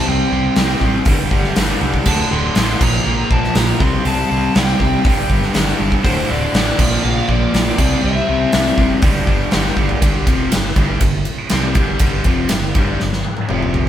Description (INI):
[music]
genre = hard rock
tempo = 121 BPM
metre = 4/4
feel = straight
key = unclear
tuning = A4 = 440 Hz
[part]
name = lead guitar through a small cranked amp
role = melody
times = 0.0-9.5 s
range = C5 to C6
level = -23 LUFS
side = equal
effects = overdrive
[part]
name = high-gain distorted guitar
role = riff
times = 0.0-13.9 s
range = D2 to C4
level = -24 LUFS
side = right 5 dB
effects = distortion
[part]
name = overdriven electric guitar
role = riff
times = 0.0-10.0 s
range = D2 to C4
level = -24 LUFS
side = right 1 dB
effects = none
[part]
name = overdriven semi-hollow guitar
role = riff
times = 0.0-13.9 s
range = D2 to C4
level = -21 LUFS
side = left 4 dB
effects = none
[part]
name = hollow-body short-scale fingered electric bass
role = bass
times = 0.1-13.9 s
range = D1 to C2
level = -22 LUFS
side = equal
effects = none
[part]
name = huge arena drum kit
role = drums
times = 0.6-13.9 s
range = crash cymbal, hi-hat, kick drum, ride cymbal, snare drum, toms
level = -17 LUFS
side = equal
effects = none
[sound]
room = moderate stone room reverb, RT60 1.1 s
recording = band playing live in one room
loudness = -13 LUFS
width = side -10 dB against mid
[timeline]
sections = 0.0-10.0 A section; 10.0-13.9 B section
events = drum fill 9.8, 13.0-13.9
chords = 0.0 C5; 1.1 G5; 2.1 D5; 2.8 Bb5; 3.8 C5; 5.1 G5; 6.0 D5; 6.8 Bb; 7.8 C; 9.0 G5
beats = | 0.08 0.58 1.07 1.57 | 2.07 2.57 3.06 3.56 | 4.06 4.55 5.05 5.55 | 6.05 6.54 7.04 7.54 | 8.03 8.53 9.03 9.52 | 10.02 10.52 11.02 11.51 | 12.01 12.51 13.01 13.50